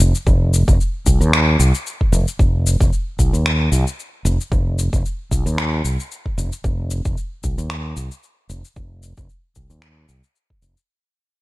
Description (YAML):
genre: organic downtempo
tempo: 113 BPM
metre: 4/4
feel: swing 55% on 16ths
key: unclear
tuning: A4 = 440 Hz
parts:
  - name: fretless electric bass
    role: bass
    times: 0.0-10.7 s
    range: F1 to Eb2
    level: -17 LUFS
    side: equal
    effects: sidechain pumping
  - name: electronic cabasa and finger snaps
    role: drums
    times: 0.0-10.9 s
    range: none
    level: -23 LUFS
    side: left 2 dB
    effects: none
  - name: electronic kick drum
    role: drums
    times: 0.3-10.6 s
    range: none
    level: -19 LUFS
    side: equal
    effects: none
room: little or no reverb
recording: none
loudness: -16 LUFS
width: side -20 dB against mid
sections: 0.0-2.4 A section; 2.4-10.9 B section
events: fade-out 2.4-10.9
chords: none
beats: | 0.27 0.80 1.33 1.86 | 2.39 2.92 3.45 3.98 | 4.52 5.05 5.58 6.11 | 6.64 7.17 7.70 8.23 | 8.76 9.29 9.82 10.36